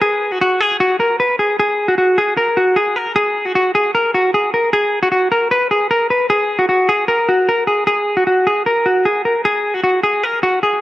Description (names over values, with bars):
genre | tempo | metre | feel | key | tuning
indie pop | 153 BPM | 4/4 | straight | F# major | A4 = 440 Hz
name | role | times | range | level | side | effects
semi-hollow electric guitar | solo | 0.0-10.8 s | F#4 to B4 | -13 LUFS | equal | tape echo
room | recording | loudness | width
moderate spring reverb, RT60 2.2 s | none | -13 LUFS | side -15 dB against mid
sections
0.0-7.9 A section; 7.9-10.8 B section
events
none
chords
none